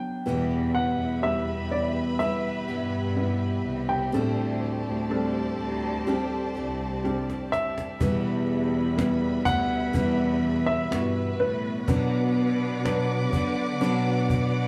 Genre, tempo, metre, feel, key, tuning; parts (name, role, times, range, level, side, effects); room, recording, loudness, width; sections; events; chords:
pop ballad; 62 BPM; 4/4; straight; E minor; A4 = 439 Hz
dark baby grand piano; melody; 0.0-12.3 s; B4 to G5; -32 LUFS; equal
felt-muted upright piano; accompaniment; 0.0-14.7 s; A2 to B4; -30 LUFS; equal
picked steel-string acoustic guitar; arpeggios; 0.0-14.7 s; E2 to G4; -36 LUFS; equal
warm studio string section; sustained chords; 0.3-14.7 s; G3 to D6; -36 LUFS; equal
clear symphonic cello section; bass; 0.3-14.7 s; C2 to D3; -32 LUFS; equal
cajon; drums; 7.1-14.5 s; -32 LUFS; equal
wet large studio reverb, RT60 0.8 s; band playing live in one room; -26 LUFS; mono
0.0-8.0 A section; 8.0-14.7 B section
drum fill 7.0-8.0
0.3 Em; 4.1 D7sus4; 8.0 Em; 11.9 Bm